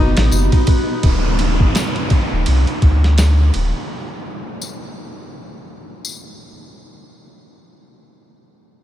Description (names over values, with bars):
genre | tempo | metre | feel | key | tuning
trip hop | 84 BPM | 4/4 | swing 58% on 16ths | unclear | A4 = 440 Hz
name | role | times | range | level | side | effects
warm studio string section | sustained chords | 0.0-1.1 s | B2 | -28 LUFS | right 2 dB | none
Celtic harp | arpeggios | 0.0-2.7 s | D#4 to B4 | -26 LUFS | left 2 dB | vintage 12-bit sampler grit, diffuse ambient delay
warm sub bass | bass | 0.0-3.7 s | D1 to D2 | -14 LUFS | equal | none
wind-like tuned noise texture | texture | 0.0-1.0 s | B5 | -40 LUFS | right 3 dB | none
boom bap sampler-style drum kit | drums | 0.2-3.7 s | kick drum, ride cymbal, snare drum | -18 LUFS | equal | small room reverb
tambourine | percussion | 0.3-6.2 s | none | -32 LUFS | left 6 dB | none
downlifter | sound effects | 1.0-6.8 s | none | -25 LUFS | right 1 dB | none
room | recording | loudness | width
moderate huge ambient reverb, RT60 9.0 s | dreamy mix soaked in reverb | -13 LUFS | side -12 dB against mid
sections
0.0-1.0 A section; 1.0-6.8 B section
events
none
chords
0.0 B7; 1.0 D5; 3.9 N.C.